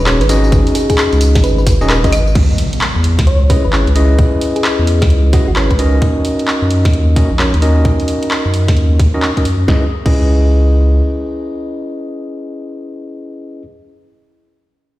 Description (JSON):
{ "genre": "UK garage, two-step garage", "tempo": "131 BPM", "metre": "4/4", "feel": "swing 64% on 16ths", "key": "C# dorian", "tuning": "A4 = 440 Hz", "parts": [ { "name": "thumb-piano-like synth pluck", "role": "melody", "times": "0.0-5.9 s", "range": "F#4 to D#5", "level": "-21 LUFS", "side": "equal", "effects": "chorus, ping-pong delay" }, { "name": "saturated sub bass", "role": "bass", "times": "0.0-11.0 s", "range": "D#1 to F#2", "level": "-12 LUFS", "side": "equal", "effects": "none" }, { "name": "overdriven tine electric piano", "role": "stabs", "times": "0.1-13.6 s", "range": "C#4 to D#5", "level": "-18 LUFS", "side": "equal", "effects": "low-pass filter, ping-pong delay" }, { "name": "punchy analog drum machine", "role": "drums", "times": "0.1-10.2 s", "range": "claves, crash cymbal, handclaps, hi-hat, snare drum, tambourine", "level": "-20 LUFS", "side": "equal", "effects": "none" }, { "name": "electronic kick drum", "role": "drums", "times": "0.5-10.2 s", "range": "none", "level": "-13 LUFS", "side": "equal", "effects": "overdrive" }, { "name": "impact", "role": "sound effects", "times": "2.4-4.2 s", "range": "none", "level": "-20 LUFS", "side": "equal", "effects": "none" } ], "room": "digital ambience", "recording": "played on a big sound system in a bare room, stone room reverb", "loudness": "-10 LUFS", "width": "side -16 dB against mid", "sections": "0.0-2.4 A section; 2.4-9.7 B section; 9.7-13.3 C section", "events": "drop 0.0-2.4; impact 2.4-4.2; filter sweep on tine electric piano 2.4-9.7", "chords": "0.0 G#7sus4; 2.4 C#m9; 6.0 D#m7; 9.7 C#m9" }